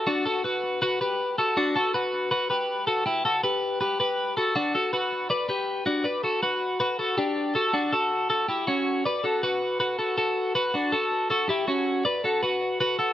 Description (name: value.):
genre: indie pop.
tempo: 160 BPM.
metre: 4/4.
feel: straight.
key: B minor.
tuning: A4 = 440 Hz.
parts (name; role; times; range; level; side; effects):
twelve-string electric guitar; solo; 0.0-13.1 s; C#4 to D5; -23 LUFS; left 1 dB; none.
room: moderate spring reverb, RT60 1.7 s.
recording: echo-heavy mix.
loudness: -23 LUFS.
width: side -12 dB against mid.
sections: 0.0-6.1 A section; 6.1-13.1 B section.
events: none.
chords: 0.1 Bm; 3.1 Em; 4.6 Bm; 7.6 F#m; 9.1 Bm; 10.6 F#sus4; 12.1 Bm.